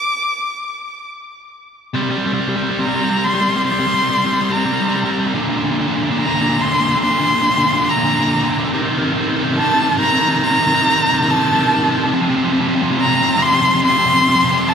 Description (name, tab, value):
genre	rock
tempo	71 BPM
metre	4/4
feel	straight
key	unclear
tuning	A4 = 440 Hz
part	rich violin	melody	0.0-14.7 s	A5 to D6	-17 LUFS	equal	tape echo
part	biting overdriven guitar	riff	1.9-14.7 s	F2 to G3	-16 LUFS	equal	none
room	moderate recital hall reverb, RT60 1.7 s, studio reverb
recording	none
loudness	-14 LUFS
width	side -7 dB against mid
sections	0.0-1.9 A section; 1.9-14.7 B section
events	build-up 1.9-14.7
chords	0.0 N.C.; 1.9 C5; 5.3 Bbadd9; 8.7 Cm7; 12.1 F5